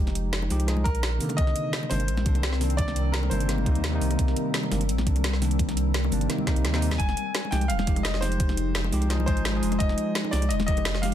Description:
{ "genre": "liquid drum and bass", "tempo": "171 BPM", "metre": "4/4", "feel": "straight", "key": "F dorian", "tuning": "A4 = 440 Hz", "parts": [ { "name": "bell-like tine electric piano", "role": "accompaniment", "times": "0.0-11.1 s", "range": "C3 to Ab4", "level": "-31 LUFS", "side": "equal", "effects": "digital delay" }, { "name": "glassy FM pad", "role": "sustained chords", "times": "0.0-11.1 s", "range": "G3 to Bb4", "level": "-32 LUFS", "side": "left 1 dB", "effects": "ensemble chorus, built-in reverb, sidechain pumping" }, { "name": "warm sub bass", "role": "bass", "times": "0.0-11.1 s", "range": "Eb1 to Eb2", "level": "-26 LUFS", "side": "equal", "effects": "none" }, { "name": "garage drum kit", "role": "drums", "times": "0.1-11.1 s", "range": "hi-hat, snare drum", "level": "-31 LUFS", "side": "right 1 dB", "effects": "overdrive, studio reverb" }, { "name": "bongos and congas", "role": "percussion", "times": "0.4-10.8 s", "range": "none", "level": "-36 LUFS", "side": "left 4 dB", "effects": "none" }, { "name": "bright grand piano", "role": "melody", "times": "0.8-3.8, 7.0-11.1 s", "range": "Bb4 to Ab5", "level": "-32 LUFS", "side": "left 1 dB", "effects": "digital delay" }, { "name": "electronic kick drum", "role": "drums", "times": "0.9-10.8 s", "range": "none", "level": "-26 LUFS", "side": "equal", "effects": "overdrive, studio reverb" } ], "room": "light reverb", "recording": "dense, heavily limited modern master", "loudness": "-23 LUFS", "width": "side -11 dB against mid", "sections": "0.0-11.1 A section", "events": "drum fill 6.5-7.0", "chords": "0.0 Fm9; 1.4 Cm9; 7.0 Fm9" }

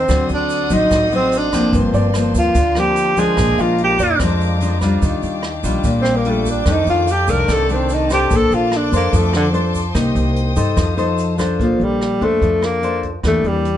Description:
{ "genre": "bossa nova", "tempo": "146 BPM", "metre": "4/4", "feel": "straight", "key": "Bb major", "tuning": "A4 = 440 Hz", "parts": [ { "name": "breathy tenor saxophone", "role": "melody", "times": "0.0-13.8 s", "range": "D3 to Bb4", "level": "-17 LUFS", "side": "right 1 dB", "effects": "none" }, { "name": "nylon-string guitar", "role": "accompaniment", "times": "0.0-13.8 s", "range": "F2 to C5", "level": "-19 LUFS", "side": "left 2 dB", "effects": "none" }, { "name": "warm concert grand piano", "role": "accompaniment", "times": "0.0-8.4 s", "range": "D5 to F5", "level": "-28 LUFS", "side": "right 2 dB", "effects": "none" }, { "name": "dark chamber string section", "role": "sustained chords", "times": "0.0-11.6 s", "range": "D4 to Eb6", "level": "-28 LUFS", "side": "left 4 dB", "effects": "none" }, { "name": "upright bass", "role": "bass", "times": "0.0-13.8 s", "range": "G1 to G2", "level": "-21 LUFS", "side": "right 1 dB", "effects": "none" }, { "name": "jazz brush drum kit", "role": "drums", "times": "0.1-13.7 s", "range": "hi-hat, kick drum, rim click", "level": "-25 LUFS", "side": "right 1 dB", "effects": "none" }, { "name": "egg shaker", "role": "percussion", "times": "0.1-11.6 s", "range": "none", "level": "-35 LUFS", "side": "right 6 dB", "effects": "none" } ], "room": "light reverb", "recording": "nothing above 10.7 kHz", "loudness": "-14 LUFS", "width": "side -11 dB against mid", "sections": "0.0-11.6 A section; 11.6-13.8 B section", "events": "tenor saxophone solo 0.0-11.6", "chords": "0.1 D7b9; 1.7 Gm11; 3.4 Bb7; 5.0 Ebmaj9; 6.7 F13; 8.3 Bbmaj9; 10.0 Cm7; 10.8 F7; 11.6 Bbmaj9; 13.2 Em7b5" }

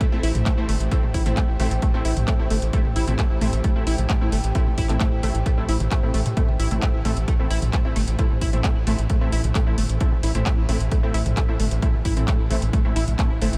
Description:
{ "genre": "driving peak-time techno", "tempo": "132 BPM", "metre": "4/4", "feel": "straight", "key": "A minor", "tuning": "A4 = 438 Hz", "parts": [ { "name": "tight sequenced synth", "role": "riff", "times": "0.0-13.5 s", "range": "A3 to E4", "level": "-32 LUFS", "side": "equal", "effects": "chorus, phaser, tube saturation, sidechain pumping, tape echo" }, { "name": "metallic inharmonic drone", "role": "drone", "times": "0.0-13.6 s", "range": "A2", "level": "-34 LUFS", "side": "equal", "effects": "none" }, { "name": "electronic kick drum", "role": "drums", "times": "0.0-13.3 s", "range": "none", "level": "-24 LUFS", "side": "equal", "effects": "none" }, { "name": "techno drum kit", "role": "drums", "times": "0.0-13.6 s", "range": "handclaps, hi-hat, toms", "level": "-32 LUFS", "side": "equal", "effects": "sidechain pumping on hats, sidechain pumping on toms" }, { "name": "warbly tape-like pad", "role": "texture", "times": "0.0-13.6 s", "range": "G4 to G5", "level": "-38 LUFS", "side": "equal", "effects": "chorus, built-in reverb, sidechain pumping" }, { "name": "rave stab", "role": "stabs", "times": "0.1-13.5 s", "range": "A3 to E4", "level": "-33 LUFS", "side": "equal", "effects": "chorus, built-in reverb, sidechain pumping, tape echo" }, { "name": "gritty driven synth bass", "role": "bass", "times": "0.1-13.6 s", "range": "G1 to A2", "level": "-26 LUFS", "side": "equal", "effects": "sidechain pumping" } ], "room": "light reverb, digital ambience", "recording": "none", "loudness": "-22 LUFS", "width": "mono", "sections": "0.0-13.6 A section", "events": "none", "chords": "0.0 Am" }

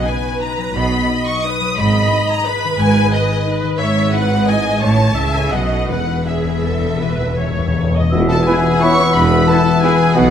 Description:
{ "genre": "classical, orchestral ballroom waltz", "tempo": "152-193 BPM", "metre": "3/4", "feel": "rubato", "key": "E major from 3.8 s", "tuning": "A4 = 440 Hz", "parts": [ { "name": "warm studio violin section", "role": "melody", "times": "0.0-10.3 s", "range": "D#5 to D#6", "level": "-22 LUFS", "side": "left 3 dB", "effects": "none" }, { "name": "rich studio violin section", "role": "second line", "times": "0.0-10.3 s", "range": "F#4 to D#6", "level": "-25 LUFS", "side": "left 3 dB", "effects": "none" }, { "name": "rich studio viola section", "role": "accompaniment", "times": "0.0-9.9 s", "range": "B3 to E5", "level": "-22 LUFS", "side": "right 1 dB", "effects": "none" }, { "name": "concert harp", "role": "arpeggios", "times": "0.0-10.3 s", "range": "G#2 to B5", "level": "-21 LUFS", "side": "left 7 dB", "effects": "none" }, { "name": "timpani", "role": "percussion", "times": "0.0-0.2, 5.9-8.1 s", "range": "E2 to B2", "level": "-24 LUFS", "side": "left 1 dB", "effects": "none" }, { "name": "clear studio cello section", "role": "bass", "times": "0.7-10.3 s", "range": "E2 to C#3", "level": "-21 LUFS", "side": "right 3 dB", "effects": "none" }, { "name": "warm studio double bass section", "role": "bass", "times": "0.7-10.3 s", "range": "E1 to C#2", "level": "-22 LUFS", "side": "right 3 dB", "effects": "none" }, { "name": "dark clarinet", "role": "second line", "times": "8.1-10.3 s", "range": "B4", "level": "-24 LUFS", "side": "left 1 dB", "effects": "none" }, { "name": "warm oboe", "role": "second line", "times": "8.1-10.3 s", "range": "D#5 to E5", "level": "-21 LUFS", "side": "right 1 dB", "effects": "none" }, { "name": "warm bassoon", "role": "accompaniment", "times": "8.1-10.3 s", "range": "B3", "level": "-22 LUFS", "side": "right 2 dB", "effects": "none" }, { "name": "warm tuba", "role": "bass", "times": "8.1-10.3 s", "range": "E1 to B1", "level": "-21 LUFS", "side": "right 4 dB", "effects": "none" }, { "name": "tam-tam", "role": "percussion", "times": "8.1-9.4 s", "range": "none", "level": "-24 LUFS", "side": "left 1 dB", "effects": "none" }, { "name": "silver concert flute", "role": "second line", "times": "8.3-10.3 s", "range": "F#5 to C#6", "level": "-21 LUFS", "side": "equal", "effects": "none" }, { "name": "mellow French horn section", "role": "sustained chords", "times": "8.5-9.9 s", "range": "E3 to E4", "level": "-25 LUFS", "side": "left 1 dB", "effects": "none" }, { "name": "mellow trumpet", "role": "stabs", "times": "8.5-10.0 s", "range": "B4", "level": "-24 LUFS", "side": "right 2 dB", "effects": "none" } ], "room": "moderate concert hall reverb, RT60 1.9 s", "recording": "none", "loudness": "-13 LUFS", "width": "side -8 dB against mid", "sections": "0.0-8.1 A section; 8.1-10.3 B section", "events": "timpani fill 5.9-8.1; band accent 8.1-8.5", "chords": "0.0 B; 1.8 G#m; 3.8 E/G#; 4.8 A; 5.5 B7; 5.9 E" }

